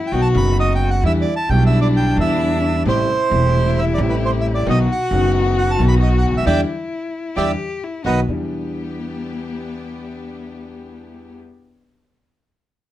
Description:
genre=tango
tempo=133 BPM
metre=4/4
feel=rubato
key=E minor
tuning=A4 = 440 Hz
part: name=warm cello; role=second line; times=0.0-11.4 s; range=B3 to G4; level=-25 LUFS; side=left 3 dB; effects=none
part: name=bandoneon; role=melody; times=0.1-8.2 s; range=B4 to B5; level=-21 LUFS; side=right 3 dB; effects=none
part: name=warm concert grand piano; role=accompaniment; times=0.1-11.4 s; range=E1 to F#4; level=-22 LUFS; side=left 2 dB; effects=none
part: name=warm studio string section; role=stabs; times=0.1-11.4 s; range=F#3 to G4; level=-31 LUFS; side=right 1 dB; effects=none
part: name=upright bass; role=bass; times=0.1-8.5 s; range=E1 to E2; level=-18 LUFS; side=right 1 dB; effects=none
room=light reverb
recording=close, detailed microphones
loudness=-16 LUFS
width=side -13 dB against mid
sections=0.0-8.3 A section; 8.3-11.9 B section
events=band accent 6.5-8.3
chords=0.1 B; 1.0 Em7; 2.9 Am7; 4.7 B; 6.5 Em7; 7.8 B; 8.3 Em7

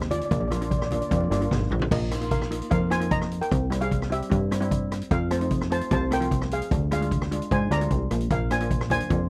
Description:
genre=calypso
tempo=150 BPM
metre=4/4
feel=straight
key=unclear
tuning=A4 = 438 Hz
part: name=steel pan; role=melody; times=0.0-9.3 s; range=F4 to Bb5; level=-32 LUFS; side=equal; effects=none
part: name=steel pan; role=accompaniment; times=0.0-9.2 s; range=F3 to F4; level=-33 LUFS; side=equal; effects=none
part: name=plucky analog bass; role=bass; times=0.0-9.3 s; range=G1 to Ab2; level=-29 LUFS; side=equal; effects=none
part: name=street-band drum kit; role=drums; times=0.0-9.2 s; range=crash cymbal, hi-hat, kick drum, rim click, snare drum, toms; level=-30 LUFS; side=equal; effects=none
part: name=congas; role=percussion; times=0.1-1.9, 8.9-9.0 s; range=none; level=-37 LUFS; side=equal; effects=none
room=light reverb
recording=dry, close 1970s-style studio recording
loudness=-25 LUFS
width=mono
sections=0.0-1.9 A section; 1.9-9.3 A section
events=drum fill 1.4-1.9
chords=0.3 Bb; 1.9 Bbsus4; 3.5 C; 5.1 F; 6.7 Dm7b5; 8.3 Bb

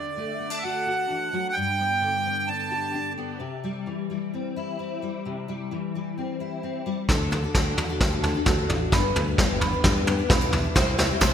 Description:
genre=indie folk with a building arrangement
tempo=130 BPM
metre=4/4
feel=straight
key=G major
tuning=A4 = 441 Hz
part: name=accordion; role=melody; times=0.0-3.1 s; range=D5 to A5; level=-26 LUFS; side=right 3 dB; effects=digital delay
part: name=fingerpicked steel-string acoustic guitar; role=accompaniment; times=0.0-11.3 s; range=G2 to G4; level=-30 LUFS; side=left 3 dB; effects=ensemble chorus
part: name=picked twelve-string acoustic guitar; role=accompaniment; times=7.1-11.3 s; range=C3 to C5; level=-30 LUFS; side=left 5 dB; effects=lush chorus
part: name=ukulele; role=arpeggios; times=7.1-11.3 s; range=A4 to C6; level=-33 LUFS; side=right 8 dB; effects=none
part: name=fingered electric bass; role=bass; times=7.1-11.3 s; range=G1 to G2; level=-28 LUFS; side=equal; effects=none
part: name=soft brush drum kit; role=drums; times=7.1-11.3 s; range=kick drum, snare drum, toms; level=-22 LUFS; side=equal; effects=gated reverb
part: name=group handclap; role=percussion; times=11.2-11.3 s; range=none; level=-35 LUFS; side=right 8 dB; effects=none
part: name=tambourine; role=percussion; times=11.2-11.3 s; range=none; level=-34 LUFS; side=right 18 dB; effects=none
room=light reverb, small room ambience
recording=bright 1980s-style digital production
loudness=-23 LUFS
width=side -9 dB against mid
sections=0.0-7.1 A section; 7.1-11.3 B section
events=build-up 7.1-11.3; drum fill 7.1-11.3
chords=0.0 D; 1.6 G; 3.4 C; 7.1 D; 8.9 G; 10.8 C

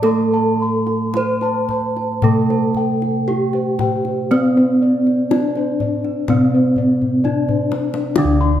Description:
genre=Javanese gamelan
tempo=53-65 BPM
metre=4/4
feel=straight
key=unclear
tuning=A4 = 440 Hz
part: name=gamelan-type bronze metallophone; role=melody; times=0.0-8.6 s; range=C4-40c to C5-40c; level=-19 LUFS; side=left 1 dB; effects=none
part: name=gamelan-type bronze metallophone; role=accompaniment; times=0.0-8.6 s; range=D3 to C4-40c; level=-21 LUFS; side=right 3 dB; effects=none
part: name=gamelan-type bronze metallophone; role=arpeggios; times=0.0-8.6 s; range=C5-40c to C6-40c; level=-27 LUFS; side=right 6 dB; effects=none
part: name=gamelan-type bossed gongs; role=bass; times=0.0-8.6 s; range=D2 to C5-40c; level=-24 LUFS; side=left 1 dB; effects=none
part: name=kendang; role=percussion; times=0.0-8.4 s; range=none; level=-23 LUFS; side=left 4 dB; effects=none
part: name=gamelan-type bossed gongs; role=arpeggios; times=0.1-8.6 s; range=C5-40c to D6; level=-26 LUFS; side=left 4 dB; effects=none
room=moderate recital hall reverb, RT60 1.6 s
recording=none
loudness=-15 LUFS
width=side -11 dB against mid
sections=0.0-8.2 A section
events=drum fill 7.0-8.2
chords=none

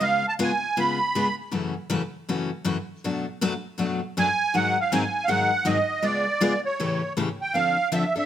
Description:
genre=jazz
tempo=159 BPM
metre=4/4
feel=swing 63% on 8ths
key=F# minor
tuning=A4 = 440 Hz
part: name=musette accordion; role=melody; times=0.0-1.4, 4.2-8.3 s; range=C#5 to B5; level=-23 LUFS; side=right 3 dB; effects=plate reverb
part: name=picked steel-string acoustic guitar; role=accompaniment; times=0.0-8.3 s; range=F#2 to A4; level=-26 LUFS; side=left 3 dB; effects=none
room=moderate studio reverb, RT60 0.9 s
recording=none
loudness=-22 LUFS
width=side -10 dB against mid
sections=0.0-7.5 A section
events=none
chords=0.0 C#7; 1.5 F#m7; 3.0 D6/F#; 4.5 G#7; 6.0 C#7b9; 6.8 A7; 7.5 Dm7

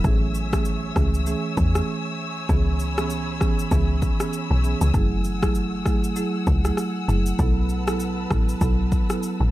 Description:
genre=afrobeats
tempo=98 BPM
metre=4/4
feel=swing 58% on 16ths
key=C# minor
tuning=A4 = 440 Hz
part: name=marimba with medium mallets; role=accompaniment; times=0.0-9.3 s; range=E3 to A4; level=-26 LUFS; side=right 3 dB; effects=none
part: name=rich studio string section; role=sustained chords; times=0.0-9.5 s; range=A3 to E6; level=-33 LUFS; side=left 2 dB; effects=none
part: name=woody log drum bass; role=bass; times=0.0-9.5 s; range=F#1 to E2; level=-23 LUFS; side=equal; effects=none
part: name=afro-pop drum kit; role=drums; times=0.0-9.4 s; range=kick drum, rim click, shaker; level=-24 LUFS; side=equal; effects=overdrive
room=light reverb, studio ambience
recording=dark, warm production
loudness=-20 LUFS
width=side -16 dB against mid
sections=0.0-9.5 A section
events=break 1.9-2.5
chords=0.0 Amaj7; 2.5 C#m7; 4.9 F#m9; 7.4 B7sus4

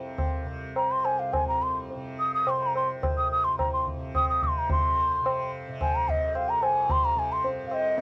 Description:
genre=indian classical, Hindustani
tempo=108 BPM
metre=5/4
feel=straight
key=C raga malkauns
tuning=A4 = 440 Hz
part: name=tanpura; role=drone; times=0.0-8.0 s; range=C2 to C3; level=-37 LUFS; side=equal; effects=cassette tape
part: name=tabla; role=percussion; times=0.2-8.0 s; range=none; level=-30 LUFS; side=equal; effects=none
part: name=breathy hollow bansuri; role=melody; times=0.8-8.0 s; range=Eb5 to Eb6+25c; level=-24 LUFS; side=equal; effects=cassette tape
room=light reverb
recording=home recording on cassette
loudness=-24 LUFS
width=side -27 dB against mid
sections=0.0-4.7 A section; 4.7-8.0 B section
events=speeding up 0.0-8.0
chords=none

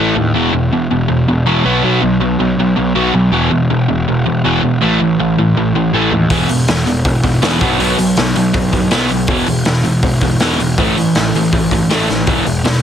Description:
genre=punk rock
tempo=161 BPM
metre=4/4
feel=straight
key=unclear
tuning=A4 = 441 Hz
part: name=crunchy overdriven guitar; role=riff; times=0.0-12.8 s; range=E2 to B3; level=-13 LUFS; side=equal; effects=none
part: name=fuzz picked electric bass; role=bass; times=0.0-12.8 s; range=E1 to D#2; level=-18 LUFS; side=equal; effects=overdrive
part: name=raw garage drum kit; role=drums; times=6.3-12.7 s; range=hi-hat, kick drum, snare drum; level=-17 LUFS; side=left 1 dB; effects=none
room=little or no reverb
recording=heavily compressed radio sound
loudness=-11 LUFS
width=side -9 dB against mid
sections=0.0-12.8 A section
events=drum fill 12.1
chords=0.3 E5; 1.6 B5; 3.3 E5; 4.8 A5; 6.3 E5; 7.6 B5; 9.3 E5; 10.8 A5; 12.3 E5

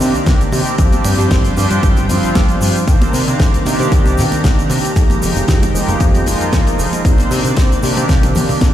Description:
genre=nu-disco, nu disco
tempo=115 BPM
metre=4/4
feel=swing 54% on 16ths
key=C minor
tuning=A4 = 436 Hz
part: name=mellow synth brass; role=accompaniment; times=0.0-8.7 s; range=Eb3 to C5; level=-17 LUFS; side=equal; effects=chorus, sidechain pumping, dub echo
part: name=lush unison pad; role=sustained chords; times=0.0-8.7 s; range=Eb3 to Bb5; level=-24 LUFS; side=equal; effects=chorus, vintage 12-bit sampler grit, sidechain pumping
part: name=fat analog bass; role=bass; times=0.0-8.7 s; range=F1 to C3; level=-18 LUFS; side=equal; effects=tube saturation
part: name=damped 70s drum kit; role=drums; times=0.0-8.7 s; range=hi-hat, shaker, snare drum, toms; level=-22 LUFS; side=left 1 dB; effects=studio reverb
part: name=cabasa and congas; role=percussion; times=0.0-8.7 s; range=none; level=-27 LUFS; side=right 3 dB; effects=none
part: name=electronic kick drum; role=drums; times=0.3-8.7 s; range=none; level=-14 LUFS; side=equal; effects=studio reverb
room=light reverb, small room ambience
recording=played on a big sound system in a bare room, stone room reverb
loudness=-11 LUFS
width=side -12 dB against mid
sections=0.0-8.7 A section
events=drum fill 8.1-8.7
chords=0.0 Cm9; 0.8 G7sus4; 2.9 Cm9; 5.0 Fm11; 7.0 Cm9

